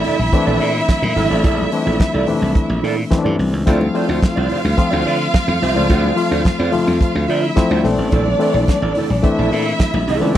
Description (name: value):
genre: disco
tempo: 108 BPM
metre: 4/4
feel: straight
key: unclear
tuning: A4 = 436 Hz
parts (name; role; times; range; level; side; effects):
- rich studio violin section; second line; 0.0-10.4 s; D4 to F5; -22 LUFS; right 1 dB; none
- bright reed electric piano; accompaniment; 0.0-10.4 s; E3 to F4; -20 LUFS; left 4 dB; none
- mellow electric guitar; accompaniment; 0.0-10.4 s; E4 to E5; -22 LUFS; right 5 dB; ensemble chorus
- warm soul drum kit; drums; 0.0-10.4 s; crash cymbal, hi-hat, kick drum, snare drum; -18 LUFS; right 1 dB; none
- congas; percussion; 0.1-10.2 s; none; -28 LUFS; left 3 dB; none
- glassy slap bass; bass; 0.2-10.4 s; G#1 to D3; -19 LUFS; right 1 dB; none
room: little or no reverb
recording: none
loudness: -14 LUFS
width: side -12 dB against mid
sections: 0.0-10.4 A section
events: none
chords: 0.0 Bbmaj9#11; 3.7 Dm7; 7.8 Bbmaj9#11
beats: 0.33 0.89 | 1.44 2.00 2.56 3.11 | 3.67 4.23 4.78 5.34 | 5.90 6.46 7.01 7.57 | 8.13 8.68 9.24 9.80 | 10.35